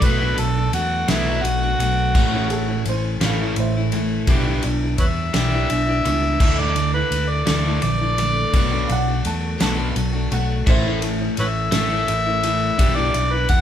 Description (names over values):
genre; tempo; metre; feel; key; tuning
folk rock and heartland rock; 56 BPM (dotted quarters); 6/8; straight; unclear; A4 = 440 Hz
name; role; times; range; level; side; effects
overdriven harmonica; melody; 0.0-13.6 s; E4 to F#5; -22 LUFS; equal; none
picked steel-string acoustic guitar; accompaniment; 0.0-13.6 s; A2 to F#4; -28 LUFS; left 4 dB; none
overdriven electric guitar; riff; 0.0-13.5 s; A2 to A4; -25 LUFS; right 2 dB; none
fingered electric bass; bass; 0.0-13.6 s; A1 to E2; -23 LUFS; equal; none
loose indie drum kit; drums; 0.0-13.6 s; crash cymbal, kick drum, ride cymbal, snare drum; -23 LUFS; equal; none
dark upright piano; second line; 2.5-4.8, 8.9-11.2 s; G#4 to A5; -29 LUFS; right 3 dB; none
room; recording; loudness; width
light reverb; band playing live in one room; -17 LUFS; side -10 dB against mid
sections
0.0-13.6 A section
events
harmonica solo 0.0-13.6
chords
0.0 Bm7; 2.2 A; 4.3 G6/B; 6.4 Dsus2; 8.5 Bm7; 10.7 A; 12.8 G6/B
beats
| 0.02 1.09 | 2.15 3.22 | 4.28 5.35 | 6.41 7.48 | 8.54 9.60 | 10.67 11.73 | 12.79